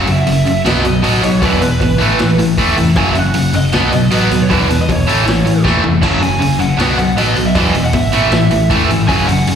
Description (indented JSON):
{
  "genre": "punk rock",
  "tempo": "156 BPM",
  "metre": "4/4",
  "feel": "straight",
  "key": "unclear",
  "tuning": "A4 = 440 Hz",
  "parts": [
    { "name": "lead guitar through a small cranked amp", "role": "melody", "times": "0.0-9.6 s", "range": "B4 to A5", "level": "-20 LUFS", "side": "right 3 dB", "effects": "overdrive, slapback echo" },
    { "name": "biting overdriven guitar", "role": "riff", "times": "0.0-9.6 s", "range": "E2 to B3", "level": "-16 LUFS", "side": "right 9 dB", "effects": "slapback echo" },
    { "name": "cranked stack guitar", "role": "riff", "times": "0.0-9.6 s", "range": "E2 to B3", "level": "-15 LUFS", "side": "left 8 dB", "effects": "overdrive, slapback echo" },
    { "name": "overdriven picked electric bass", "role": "bass", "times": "0.0-9.6 s", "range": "E1 to D#2", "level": "-18 LUFS", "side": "equal", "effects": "none" },
    { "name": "raw garage drum kit", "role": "drums", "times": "0.1-9.6 s", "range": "crash cymbal, hi-hat, kick drum, snare drum, toms", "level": "-20 LUFS", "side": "equal", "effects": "none" }
  ],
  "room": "light reverb",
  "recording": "live gig heard through the venue's PA, recital hall reverb",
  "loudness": "-10 LUFS",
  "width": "side -8 dB against mid",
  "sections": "0.0-9.6 A section",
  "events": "half time 0.0-9.6; drum fill 5.6-6.0",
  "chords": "0.0 F#5; 0.6 B; 1.4 E; 2.0 A5; 3.0 F#5; 3.7 B; 4.5 E5; 5.1 A; 6.0 F#5; 6.8 B5; 7.6 E; 8.1 A5"
}